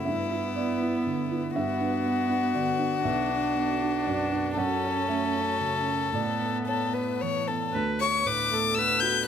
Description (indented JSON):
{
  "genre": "neoclassical piano and strings",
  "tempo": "110-122 BPM",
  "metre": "3/4",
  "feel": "rubato",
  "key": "D major",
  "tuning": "A4 = 444 Hz",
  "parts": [
    { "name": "warm violin", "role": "melody", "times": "0.0-9.3 s", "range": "E4 to G6", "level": "-28 LUFS", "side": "left 6 dB", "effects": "none" },
    { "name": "felt-muted upright piano", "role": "accompaniment", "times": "0.0-9.3 s", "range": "B1 to F#5", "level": "-30 LUFS", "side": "right 4 dB", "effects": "none" },
    { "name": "rich viola", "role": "accompaniment", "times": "0.0-9.3 s", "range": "B3 to C#5", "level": "-31 LUFS", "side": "right 3 dB", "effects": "none" },
    { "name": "dark chamber string section", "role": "sustained chords", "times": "0.0-9.3 s", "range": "B3 to B4", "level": "-39 LUFS", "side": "left 2 dB", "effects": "none" }
  ],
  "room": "light reverb",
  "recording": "close, detailed microphones",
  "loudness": "-24 LUFS",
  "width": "side -8 dB against mid",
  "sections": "0.0-7.7 A section; 7.7-9.3 B section",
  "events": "none",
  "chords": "0.1 Em7/G; 1.6 Gmaj7; 3.0 Bm; 4.6 F#m7; 6.1 Aadd9; 7.7 D6",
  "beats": "| 0.07 0.56 1.06 | 1.56 2.05 2.55 | 3.04 3.55 4.07 | 4.58 5.09 5.60 | 6.14 6.68 7.21 | 7.74 8.26 8.77"
}